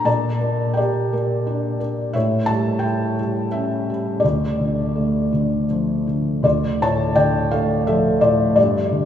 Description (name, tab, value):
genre	classical, lyrical solo piano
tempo	79-88 BPM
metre	3/4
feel	rubato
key	D harmonic minor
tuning	A4 = 441 Hz
part	felt-muted upright piano	solo	0.0-9.1 s	D2 to A5	-17 LUFS	left 1 dB	none
room	wet cathedral reverb, RT60 5.0 s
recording	recorded in a church or concert hall, small room ambience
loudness	-17 LUFS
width	side -9 dB against mid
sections	0.0-6.4 A section; 6.4-9.1 A section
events	none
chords	0.1 Gmadd9/Bb; 2.2 A7; 4.2 Dm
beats	| 0.07 0.78 1.47 | 2.15 2.84 3.54 | 4.24 4.95 5.70 | 6.45 7.17 7.87 | 8.58